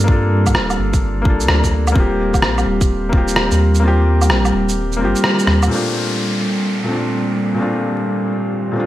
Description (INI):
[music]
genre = future garage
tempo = 128 BPM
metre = 4/4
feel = swing 65% on 16ths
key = unclear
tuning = A4 = 440 Hz
[part]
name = felt-muted upright piano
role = accompaniment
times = 0.0-8.9 s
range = Bb2 to A4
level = -20 LUFS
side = left 2 dB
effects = sidechain pumping, digital delay
[part]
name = warbly tape-like pad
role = sustained chords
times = 0.0-8.9 s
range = Bb2 to A4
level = -22 LUFS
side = right 2 dB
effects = chorus, built-in reverb, sidechain pumping
[part]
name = soft dub sub bass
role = bass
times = 0.0-5.7 s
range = D1 to G2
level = -17 LUFS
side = equal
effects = sidechain pumping
[part]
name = electronic shaker, woodblock and rim click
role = drums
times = 0.0-5.7 s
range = none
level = -19 LUFS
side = right 1 dB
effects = studio reverb, gated reverb
[part]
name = electronic kick drum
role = drums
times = 0.1-3.2 s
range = none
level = -15 LUFS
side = equal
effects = studio reverb
[part]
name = downlifter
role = sound effects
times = 5.7-8.9 s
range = none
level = -26 LUFS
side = left 1 dB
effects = none
[sound]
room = moderate lush hall reverb, RT60 1.9 s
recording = bright 1980s-style digital production, vinyl crackle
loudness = -14 LUFS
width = side -14 dB against mid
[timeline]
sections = 0.0-5.7 A section; 5.7-8.9 B section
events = kick drops out 3.8-5.7; band accent 5.2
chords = 0.0 Gm7; 2.0 Eb6; 5.7 Bbmaj7